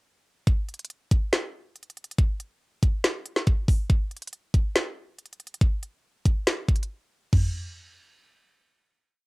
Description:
hip hop; 140 BPM; 4/4; half-time
trap drum kit; drums; 0.5-7.4 s; crash cymbal, hi-hat, kick drum, snare drum, toms; -22 LUFS; equal
little or no reverb; home recording on cassette; -23 LUFS; side -25 dB against mid
0.5-7.3 verse; 7.3-9.0 final hit
break 6.9-7.3
| 0.47 0.90 1.33 1.76 | 2.19 2.61 3.04 3.47 | 3.90 4.33 4.76 5.18 | 5.61 6.04 6.47 6.90 | 7.33

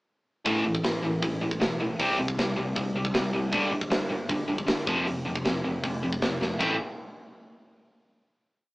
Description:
punk rock; 156 BPM; 4/4; straight; A minor; A4 = 440 Hz
distorted electric guitar; riff; 0.5-6.8 s; F2 to E4; -27 LUFS; equal; distortion
picked electric bass; bass; 0.5-6.8 s; F1 to C2; -38 LUFS; equal
tight metal drum kit; drums; 0.5-6.7 s; crash cymbal, hi-hat, kick drum, snare drum; -29 LUFS; equal
moderate studio reverb, RT60 0.5 s; rough rehearsal-room recording, small speaker sound; -25 LUFS; side -21 dB against mid
0.5-6.6 verse; 6.6-8.1 final chord
drum fill 6.4
0.5 A5; 2.0 C5; 3.5 G5; 4.9 F5; 6.6 Am
| 0.46 0.84 1.22 1.61 | 1.99 2.37 2.76 3.14 | 3.53 3.91 4.29 4.68 | 5.06 5.45 5.83 6.21 | 6.60

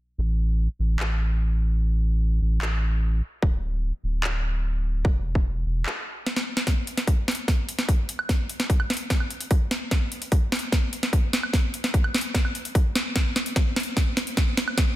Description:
future bass; 148 BPM; 4/4; half-time; A4 = 440 Hz
saturated sub bass; bass; 0.2-5.9 s; D1 to A1; -23 LUFS; equal; sidechain pumping
trap drum kit; drums; 1.0-14.9 s; handclaps, hi-hat, snare drum, woodblock; -26 LUFS; equal; overdrive, studio reverb
electronic kick drum; drums; 3.4-14.9 s; -22 LUFS; equal; overdrive, studio reverb
light reverb; dense, heavily limited modern master; -22 LUFS; side -16 dB against mid
0.2-6.7 A section; 6.7-15.0 B section
break 5.9-6.7; drum fill 6.3-6.7, 6.7-15.0; build-up 6.7-15.0
| 0.18 0.59 0.99 1.40 | 1.80 2.21 2.62 3.02 | 3.43 3.83 4.24 4.64 | 5.05 5.45 5.86 6.26 | 6.67 7.08 7.48 7.89 | 8.29 8.70 9.10 9.51 | 9.91 10.32 10.72 11.13 | 11.54 11.94 12.35 12.75 | 13.16 13.56 13.97 14.37 | 14.78

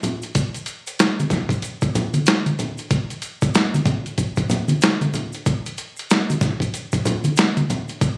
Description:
hip hop; 94 BPM; 4/4; swing 61% on 16ths
boom bap sampler-style drum kit; drums; 0.0-8.2 s; hi-hat, kick drum, snare drum; -19 LUFS; equal; overdrive
congas and maracas; percussion; 0.0-8.2 s; -22 LUFS; equal
moderate studio reverb, RT60 0.5 s; recorded on a phone in the room, studio reverb, compression; -18 LUFS; side -30 dB against mid
0.4-8.2 A section
| 0.35 0.99 1.63 2.27 | 2.91 3.55 4.18 4.82 | 5.46 6.10 6.74 7.38 | 8.02

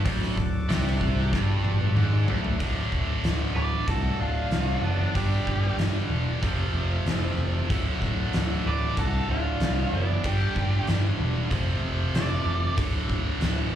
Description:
blues rock power trio and southern rock; 94 BPM; 4/4; straight; A4 = 440 Hz
overdriven tonewheel organ; sustained chords; 0.0-13.8 s; F#3 to Eb5; -40 LUFS; right 4 dB
tight distorted guitar; riff; 0.0-13.8 s; D2 to G3; -30 LUFS; equal; distortion, slapback echo
overdriven picked electric bass; bass; 0.1-13.8 s; D1 to C2; -26 LUFS; equal
oversized low-tuned drum kit; drums; 0.1-13.6 s; hi-hat, kick drum, snare drum, toms; -29 LUFS; equal
octave-fuzz lead guitar; melody; 3.6-12.8 s; D4 to D5; -32 LUFS; right 1 dB; distortion, slapback echo
lightly driven lead guitar; second line; 3.6-12.8 s; B3 to B4; -37 LUFS; right 6 dB; slapback echo
small room ambience; live gig heard through the venue's PA, club reverb; -23 LUFS; side -10 dB against mid
0.0-2.6 A section; 2.6-13.8 B section
drum fill 1.3-2.6
0.0 D; 5.1 G; 6.4 F; 7.7 D; 10.2 G; 11.5 F; 12.8 D
| 0.05 0.69 1.33 1.96 | 2.60 3.23 3.87 4.51 | 5.15 5.78 6.42 7.06 | 7.70 8.33 8.97 9.61 | 10.24 10.88 11.51 12.15 | 12.78 13.42

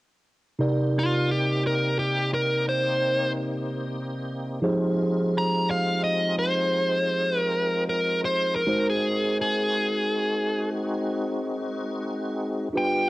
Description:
slow blues; 59 BPM (dotted quarters); 12/8; straight; C minor; A4 = 445 Hz
tine electric piano; accompaniment; 0.6-13.1 s; C3 to D5; -27 LUFS; right 1 dB; cassette tape
tonewheel organ; sustained chords; 0.6-13.1 s; G3 to G4; -32 LUFS; left 1 dB; slow rotary speaker, overdrive, chorus vibrato, cassette tape
dark smooth lead guitar; melody; 1.0-13.1 s; F4 to Bb5; -24 LUFS; equal; overdrive, cassette tape
light reverb, digital ambience; home recording on cassette; -23 LUFS; side -19 dB against mid
0.6-13.1 A section
0.6 Cm7; 4.6 Fm7; 8.7 Ab7
| 0.61 1.62 2.63 3.63 | 4.64 5.65 6.66 7.67 | 8.68 9.69 10.70 11.71 | 12.72

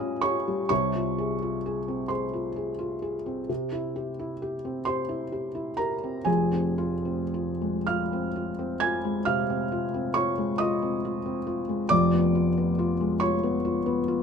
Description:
classical, romantic nocturne for solo piano; 35-47 BPM (dotted quarters); 12/8; rubato; F minor; A4 = 439 Hz
felt-muted upright piano; solo; 0.0-14.2 s; F1 to Ab6; -25 LUFS; equal
light reverb; -25 LUFS; side -6 dB against mid
0.0-14.2 A section
0.0 Gdim/Bb; 0.7 Fm/C; 3.5 C; 6.3 Fm; 11.9 Fdim7
| 0.70 2.10 3.49 4.87 | 6.27 7.87 9.28 10.60 | 11.91 13.22

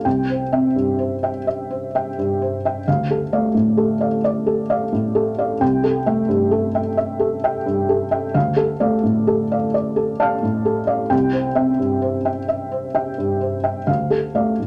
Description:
neoclassical minimalist piano; 44 BPM (dotted quarters); 6/8; rubato; D minor; A4 = 440 Hz
felt-muted upright piano; solo; 0.0-14.7 s; C2 to F6; -20 LUFS; equal
wet studio ambience, RT60 0.5 s; -20 LUFS; mono
0.0-14.7 A section
0.1 C; 2.9 Dm; 5.6 Am7/C; 8.4 Dm; 11.1 C; 13.9 Dm
| 0.06 1.47 | 2.87 4.25 | 5.61 6.98 | 8.35 9.75 | 11.12 12.49 | 13.88

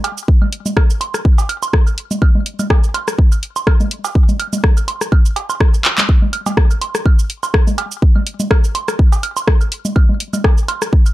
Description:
techno; 124 BPM; 4/4; swing 55% on 16ths
house drum kit; drums; 0.0-11.1 s; handclaps, hi-hat, rim click, shaker; -19 LUFS; left 1 dB
cowbell, woodblock and congas; percussion; 0.0-11.1 s; -22 LUFS; right 3 dB; ping-pong delay
electronic kick drum; drums; 0.3-11.0 s; -11 LUFS; equal
little or no reverb; dark, warm production; -12 LUFS; side -17 dB against mid
0.0-11.1 A section
drum fill 5.8
| 0.28 0.77 1.25 1.73 | 2.22 2.70 3.19 3.67 | 4.15 4.64 5.12 5.61 | 6.09 6.57 7.06 7.54 | 8.02 8.51 8.99 9.48 | 9.96 10.44 10.93

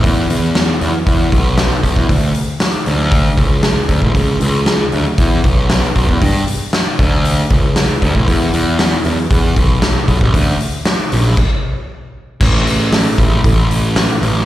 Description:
quiet-loud alternative rock; 116 BPM; 4/4; straight; A4 = 441 Hz
fuzz picked electric bass; bass; 0.0-14.4 s; A1 to G2; -14 LUFS; equal; overdrive
huge arena drum kit; drums; 0.0-14.3 s; crash cymbal, hi-hat, kick drum, snare drum; -15 LUFS; equal
little or no reverb; live gig heard through the venue's PA, recital hall reverb; -12 LUFS; side -14 dB against mid
0.0-12.4 A section; 12.4-14.5 B section
stop 11.4-12.4
| 0.05 0.56 1.07 1.58 | 2.10 2.61 3.13 3.64 | 4.15 4.67 5.18 5.70 | 6.21 6.73 7.24 7.76 | 8.27 8.79 9.31 9.82 | 10.34 10.86 11.38 11.89 | 12.41 12.93 13.45 13.96

